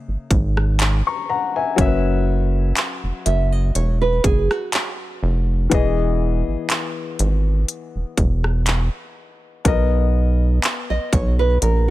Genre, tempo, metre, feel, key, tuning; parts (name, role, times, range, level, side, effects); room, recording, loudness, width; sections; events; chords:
contemporary R&B; 61 BPM; 4/4; swing 54% on 16ths; A4 = 437 Hz
warm grand piano; accompaniment; 0.0-11.9 s; C#3 to C#6; -24 LUFS; left 6 dB
rubbery square bass; bass; 0.1-11.9 s; E1 to B1; -18 LUFS; equal
trap drum kit; drums; 0.3-11.9 s; handclaps, hi-hat, kick drum, rim click; -21 LUFS; equal
nylon-string guitar; arpeggios; 3.3-11.9 s; F#4 to E5; -23 LUFS; right 4 dB; digital delay
little or no reverb; -17 LUFS; side -16 dB against mid
0.0-11.9 A section
0.0 C#m69; 1.8 F#7sus4; 5.7 Emaj7; 9.7 Bmaj7